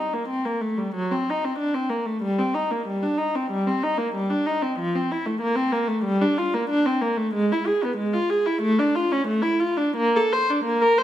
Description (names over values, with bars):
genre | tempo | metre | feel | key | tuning
classical, baroque-style suite movement for unaccompanied viola | 93 BPM | 4/4 | rubato | G minor | A4 = 439 Hz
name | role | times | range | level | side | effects
warm viola | solo | 0.0-11.0 s | F3 to C5 | -21 LUFS | equal | none
room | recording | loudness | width
wet recital hall reverb, RT60 1.3 s | minimal, uncompressed stereo recording | -21 LUFS | side -12 dB against mid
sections
0.0-11.0 A section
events
none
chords
none